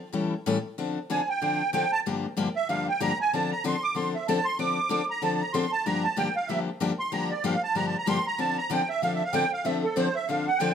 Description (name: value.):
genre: jazz.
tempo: 189 BPM.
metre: 4/4.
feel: swing 59% on 8ths.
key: D minor.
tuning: A4 = 444 Hz.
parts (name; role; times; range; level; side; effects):
picked steel-string acoustic guitar; accompaniment; 0.1-10.7 s; G2 to A4; -28 LUFS; left 4 dB; none.
musette accordion; melody; 1.1-10.7 s; A4 to D6; -26 LUFS; right 4 dB; plate reverb.
room: wet studio reverb, RT60 0.7 s.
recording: none.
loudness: -24 LUFS.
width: side -8 dB against mid.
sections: 0.8-10.7 A section.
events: accordion solo 0.0-10.7.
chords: 0.1 A7; 0.8 Dm7; 2.0 Gm7; 3.3 Dm7; 5.9 Gm7; 8.4 Dm7.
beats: 0.14 0.46 | 0.78 1.09 1.41 1.73 | 2.05 2.37 2.68 3.00 | 3.32 3.63 3.95 4.27 | 4.58 4.90 5.22 5.54 | 5.85 6.17 6.49 6.80 | 7.12 7.44 7.75 8.07 | 8.38 8.70 9.02 9.34 | 9.65 9.97 10.28 10.60.